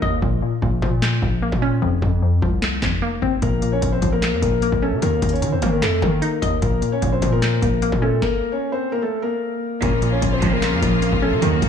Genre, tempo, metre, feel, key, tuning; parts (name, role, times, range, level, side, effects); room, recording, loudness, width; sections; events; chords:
hip hop, trap; 150 BPM; 4/4; half-time; Bb harmonic minor; A4 = 440 Hz
felt-muted upright piano; melody; 0.0-0.2, 3.4-11.7 s; A3 to Db5; -22 LUFS; left 2 dB; tape echo
hollow square pluck; accompaniment; 0.0-11.7 s; F2 to Eb5; -23 LUFS; left 2 dB; chorus
distorted 808-style bass; bass; 0.0-11.7 s; F1 to Eb3; -22 LUFS; equal; distortion
booming analog drum machine; drums; 0.0-11.7 s; handclaps, hi-hat, kick drum, snare drum; -24 LUFS; left 1 dB
clear symphonic string section; sustained chords; 9.8-11.7 s; Db3 to Gb4; -23 LUFS; equal
rich studio string section; stabs; 9.8-11.5 s; F2 to F3; -26 LUFS; right 6 dB; tape echo
light reverb, small room ambience; studio ambience; -17 LUFS; side -8 dB against mid
0.0-9.8 A section; 9.8-11.7 B section
break 0.0-3.4; stop 8.2-9.8
0.2 Bbm; 1.8 Fsus4; 3.4 Bbm; 5.0 Eb5; 6.6 Bbm; 8.2 Bbmmaj7; 9.8 Bbm